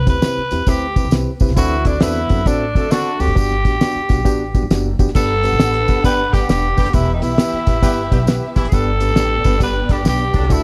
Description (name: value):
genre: uptempo 1960s-style soul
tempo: 134 BPM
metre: 4/4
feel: swing 64% on 8ths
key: G major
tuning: A4 = 440 Hz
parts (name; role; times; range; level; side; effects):
- raspy tenor saxophone; melody; 0.0-10.6 s; D4 to B4; -23 LUFS; equal; slapback echo
- barky reed electric piano; accompaniment; 0.0-10.6 s; G2 to B4; -25 LUFS; equal; overdrive
- upright bass; bass; 0.0-10.6 s; E1 to D3; -23 LUFS; equal; none
- cloth-damped thuddy drum kit; drums; 0.1-10.6 s; crash cymbal, hi-hat, kick drum, snare drum; -19 LUFS; equal; none
- tambourine; percussion; 0.1-10.6 s; none; -37 LUFS; equal; none
- warm horn section; second line; 1.6-3.3, 6.0-10.6 s; A2 to B4; -30 LUFS; equal; none
- warm studio string section; second line; 5.2-10.6 s; B3 to A5; -31 LUFS; equal; none
room: light reverb, small room reverb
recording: dark, warm production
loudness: -16 LUFS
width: mono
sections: 0.0-5.2 A section; 5.2-10.6 B section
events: none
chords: 0.0 Cmaj7; 1.6 D7; 3.4 Gmaj7; 5.2 G; 6.9 Em; 8.7 G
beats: 0.23 0.68 1.13 | 1.57 2.02 2.47 2.92 | 3.37 3.81 4.26 4.71 | 5.15 5.60 6.04 6.49 | 6.94 7.38 7.83 8.28 | 8.72 9.17 9.61 10.06 | 10.50